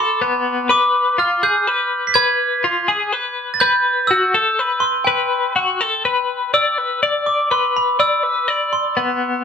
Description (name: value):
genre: rock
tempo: 82 BPM (dotted quarters)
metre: 6/8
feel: straight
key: unclear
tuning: A4 = 441 Hz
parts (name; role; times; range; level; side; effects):
- glockenspiel with hard plastic mallets; melody; 0.0-9.2 s; G5 to B6; -18 LUFS; right 2 dB; none
- twelve-string electric guitar; arpeggios; 0.0-9.4 s; B3 to D5; -18 LUFS; left 4 dB; tremolo
room: moderate studio reverb, RT60 0.5 s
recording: band playing live in one room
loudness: -15 LUFS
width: side -7 dB against mid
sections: 0.0-6.5 A section; 6.5-9.4 B section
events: none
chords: 0.0 D7(no3) (rootless); 0.7 G7b9; 3.6 A7sus2/F#; 6.5 Bm